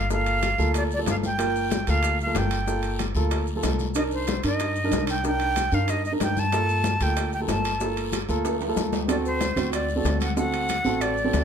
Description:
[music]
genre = Afro-Cuban jazz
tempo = 187 BPM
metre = 4/4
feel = straight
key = G minor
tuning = A4 = 435 Hz
[part]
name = breathy bright concert flute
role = melody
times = 0.0-11.4 s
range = C5 to A5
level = -27 LUFS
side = equal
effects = slapback echo
[part]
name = upright bass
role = bass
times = 0.0-11.4 s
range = G1 to G2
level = -28 LUFS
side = equal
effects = none
[part]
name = warm concert grand piano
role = accompaniment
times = 0.1-11.4 s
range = Bb3 to C5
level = -27 LUFS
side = right 2 dB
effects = none
[part]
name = bongos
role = percussion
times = 0.1-11.4 s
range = none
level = -35 LUFS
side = left 7 dB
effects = none
[part]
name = congas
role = percussion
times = 0.1-11.4 s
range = none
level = -33 LUFS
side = left 6 dB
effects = none
[part]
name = guiro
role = percussion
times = 0.1-11.4 s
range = none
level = -40 LUFS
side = left 6 dB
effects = none
[part]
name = maracas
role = percussion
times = 0.1-11.4 s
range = none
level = -41 LUFS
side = right 7 dB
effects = none
[part]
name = timbales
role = percussion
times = 0.3-11.4 s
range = none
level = -35 LUFS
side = right 6 dB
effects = none
[sound]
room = moderate club reverb, RT60 0.8 s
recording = none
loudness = -22 LUFS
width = side -7 dB against mid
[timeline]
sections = 0.0-11.4 A section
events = drum fill 8.4-9.1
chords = 0.0 Gm7; 4.0 Cm7; 6.5 Gm7; 9.1 D7

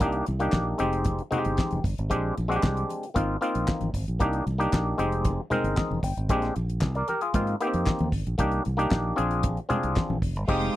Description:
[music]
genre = disco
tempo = 115 BPM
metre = 4/4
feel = straight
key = unclear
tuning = A4 = 439 Hz
[part]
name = auto-wah clav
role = accompaniment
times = 0.0-10.8 s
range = Ab3 to G5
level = -27 LUFS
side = left 1 dB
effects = none
[part]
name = fingered electric bass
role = bass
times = 0.0-10.7 s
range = F1 to Ab2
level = -28 LUFS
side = equal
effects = none
[part]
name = damped 70s drum kit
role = drums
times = 0.0-10.7 s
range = crash cymbal, handclaps, hi-hat, kick drum, snare drum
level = -27 LUFS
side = equal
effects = none
[part]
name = congas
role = percussion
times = 0.0-10.2 s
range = none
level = -35 LUFS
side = left 2 dB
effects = none
[part]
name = warm studio string section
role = sustained chords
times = 10.5-10.8 s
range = Ab3 to Eb6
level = -30 LUFS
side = right 4 dB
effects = none
[sound]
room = little or no reverb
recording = dry, close 1970s-style studio recording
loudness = -24 LUFS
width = side -14 dB against mid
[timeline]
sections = 0.0-10.5 A section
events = clav fill 5.3-6.3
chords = 0.0 Cm7; 0.8 Fm7; 2.1 Bb13; 3.2 Ab6; 4.2 Cm7; 5.0 Fm7; 6.3 Bb13; 7.3 Ab6; 8.4 Cm7; 9.2 Bb7

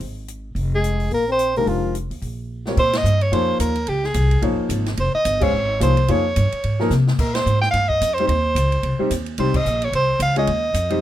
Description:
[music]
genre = modal jazz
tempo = 218 BPM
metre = 4/4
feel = swing 59% on 8ths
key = Bb dorian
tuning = A4 = 441 Hz
[part]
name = upright bass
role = bass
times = 0.0-11.0 s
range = F1 to C3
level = -21 LUFS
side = equal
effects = none
[part]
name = open jazz drum kit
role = drums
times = 0.0-11.0 s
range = crash cymbal, hi-hat, kick drum, ride cymbal, snare drum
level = -29 LUFS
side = equal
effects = none
[part]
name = trombone with bucket mute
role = second line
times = 0.7-1.9 s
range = F3 to C4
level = -25 LUFS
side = left 4 dB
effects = none
[part]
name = warm soprano saxophone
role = melody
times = 0.8-11.0 s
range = F4 to G5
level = -21 LUFS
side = right 1 dB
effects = none
[part]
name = warm baby grand piano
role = accompaniment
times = 1.6-11.0 s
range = Eb3 to F5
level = -22 LUFS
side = left 2 dB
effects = none
[sound]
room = little or no reverb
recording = minimal, uncompressed stereo recording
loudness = -17 LUFS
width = side -12 dB against mid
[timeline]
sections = 0.0-2.8 A section; 2.8-11.0 B section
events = drum fill 2.5, 6.9; band accent 2.9, 5.4, 7.3, 9.5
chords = 0.0 N.C.; 0.6 Ebsus2/F; 2.8 Bbm9; 7.2 Cm

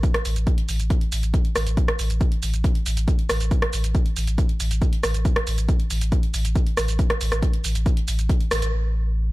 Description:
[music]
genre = driving peak-time techno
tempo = 138 BPM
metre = 4/4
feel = straight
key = unclear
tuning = A4 = 439 Hz
[part]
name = warm sub bass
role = bass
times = 0.0-9.3 s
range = A1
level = -23 LUFS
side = equal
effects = overdrive, sidechain pumping, low-pass filter
[part]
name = electronic kick drum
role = drums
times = 0.0-8.4 s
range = none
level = -21 LUFS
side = equal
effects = none
[part]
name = punchy analog drum machine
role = drums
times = 0.0-8.7 s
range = hi-hat, rim click, shaker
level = -27 LUFS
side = right 1 dB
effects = sidechain pumping on hats, sidechain pumping on perc
[sound]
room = little or no reverb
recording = none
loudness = -20 LUFS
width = side -20 dB against mid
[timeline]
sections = 0.0-8.7 A section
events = band accent 8.5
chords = none

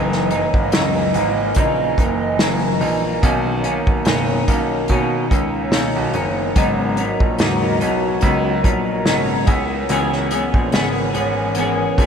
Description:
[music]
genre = indie pop, bedroom pop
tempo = 72 BPM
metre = 4/4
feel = swing 55% on 16ths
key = G# minor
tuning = A4 = 440 Hz
[part]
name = semi-hollow electric guitar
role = accompaniment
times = 0.0-12.1 s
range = F#2 to G#4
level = -19 LUFS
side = left 1 dB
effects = analog chorus, vibrato effect
[part]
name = warbly tape-like pad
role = sustained chords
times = 0.0-12.1 s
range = E3 to A#5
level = -24 LUFS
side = right 1 dB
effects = chorus, built-in reverb
[part]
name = clear concert grand piano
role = bass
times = 0.0-12.1 s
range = F#1 to B2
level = -24 LUFS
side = right 1 dB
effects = none
[part]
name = unplugged drum kit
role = drums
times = 0.1-12.1 s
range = hi-hat, kick drum, snare drum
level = -21 LUFS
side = equal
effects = none
[sound]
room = moderate huge ambient reverb, RT60 6.0 s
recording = dreamy mix soaked in reverb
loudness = -16 LUFS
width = side -7 dB against mid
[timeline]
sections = 0.0-12.1 A section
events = none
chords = 0.0 F#13; 3.2 Bmaj9; 6.6 G#m11; 9.5 C#m7

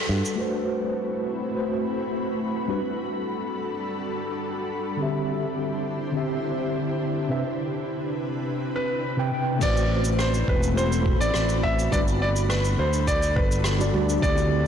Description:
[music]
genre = sunset chillout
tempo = 104 BPM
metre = 4/4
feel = straight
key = A dorian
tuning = A4 = 440 Hz
[part]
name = mellow tine electric piano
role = accompaniment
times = 0.0-14.7 s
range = C3 to G5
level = -28 LUFS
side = equal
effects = medium stereo tremolo, auto-pan, low-pass filter, digital delay
[part]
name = ethereal airy pad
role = sustained chords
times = 0.0-14.7 s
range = C3 to B5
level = -30 LUFS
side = left 1 dB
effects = ensemble chorus, built-in reverb, vintage 12-bit sampler grit
[part]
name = sustaining fretless electric bass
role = bass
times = 0.1-0.2, 9.6-14.7 s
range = E1 to G2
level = -24 LUFS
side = equal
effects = transformer saturation
[part]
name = vintage brush drum kit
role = drums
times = 0.3-0.4, 9.6-14.5 s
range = cabasa, crash cymbal, rim click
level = -32 LUFS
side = equal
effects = none
[part]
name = warm grand piano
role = melody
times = 8.8-14.7 s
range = B4 to E5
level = -27 LUFS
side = equal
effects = tape echo
[part]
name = electronic kick drum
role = drums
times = 9.6-14.3 s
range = none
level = -25 LUFS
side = equal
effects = none
[sound]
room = moderate lush hall reverb, RT60 1.8 s, small room ambience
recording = blown-out, overdriven recording, overdrive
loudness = -23 LUFS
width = side -8 dB against mid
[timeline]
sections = 0.4-9.6 A section; 9.6-14.7 B section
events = filter sweep on tine electric piano 0.4-9.6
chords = 0.4 Am69; 2.7 Gmaj7; 5.0 D9sus4; 7.3 Cmaj7; 9.6 Am69; 11.9 Gmaj7

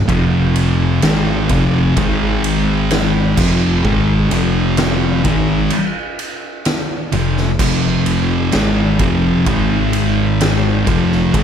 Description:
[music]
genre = stoner and doom metal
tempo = 64 BPM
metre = 4/4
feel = straight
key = unclear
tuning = A4 = 440 Hz
[part]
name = growling picked electric bass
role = bass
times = 0.0-11.4 s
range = F1 to Ab1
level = -20 LUFS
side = equal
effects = overdrive
[part]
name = thick fuzz guitar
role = riff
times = 0.1-11.4 s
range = F2 to Ab3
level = -17 LUFS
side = left 8 dB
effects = distortion
[part]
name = thick fuzz guitar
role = riff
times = 0.1-11.4 s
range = F2 to Ab3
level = -18 LUFS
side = right 8 dB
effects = distortion
[part]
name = oversized low-tuned drum kit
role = drums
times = 0.1-11.4 s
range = crash cymbal, kick drum, ride cymbal, snare drum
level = -20 LUFS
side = equal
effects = none
[sound]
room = little or no reverb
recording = none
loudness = -13 LUFS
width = side -8 dB against mid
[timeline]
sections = 0.0-11.4 A section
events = none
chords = 0.1 F5; 2.0 Ab5; 3.4 F5; 9.5 Ab5; 10.9 F5

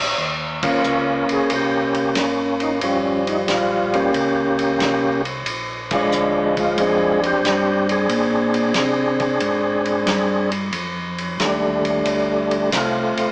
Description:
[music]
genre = soul jazz organ trio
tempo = 91 BPM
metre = 4/4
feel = swing 68% on 8ths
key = Bb mixolydian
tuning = A4 = 440 Hz
[part]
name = mellow tonewheel organ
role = bass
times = 0.0-13.3 s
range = G1 to C3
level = -28 LUFS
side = equal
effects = chorus vibrato, slow rotary speaker
[part]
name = overdriven tonewheel organ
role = melody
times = 0.6-13.3 s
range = F3 to Ab4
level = -18 LUFS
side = equal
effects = slow rotary speaker, chorus vibrato
[part]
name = warm soul drum kit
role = drums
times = 0.6-13.3 s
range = hi-hat, kick drum, ride cymbal, snare drum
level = -23 LUFS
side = equal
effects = none
[sound]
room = moderate large studio reverb, RT60 1.2 s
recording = band playing live in one room, small speaker sound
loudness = -17 LUFS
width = side -38 dB against mid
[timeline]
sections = 0.0-13.3 A section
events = band accent 0.5-0.8, 5.8-6.1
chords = 0.2 Eb13; 5.5 Bb13; 10.7 F13

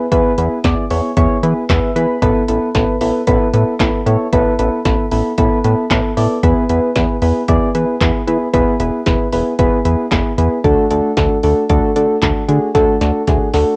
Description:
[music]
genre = synth-pop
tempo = 114 BPM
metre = 4/4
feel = straight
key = E mixolydian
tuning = A4 = 440 Hz
[part]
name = soft electric-piano-like synth keys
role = accompaniment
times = 0.0-13.7 s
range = A3 to B5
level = -17 LUFS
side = equal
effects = chorus, cassette tape
[part]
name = chorused synth bass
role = bass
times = 0.1-13.6 s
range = E1 to E3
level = -20 LUFS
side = equal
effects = none
[part]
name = punchy analog drum machine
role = drums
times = 0.1-13.7 s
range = handclaps, hi-hat, kick drum, snare drum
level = -21 LUFS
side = equal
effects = none
[sound]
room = wet booth ambience, RT60 0.2 s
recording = home recording on cassette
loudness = -15 LUFS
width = mono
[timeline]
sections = 0.0-13.8 A section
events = synth keys fill 1.4-2.2; drum fill 12.7-13.8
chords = 0.0 E; 2.2 Asus2; 6.4 E; 10.6 D

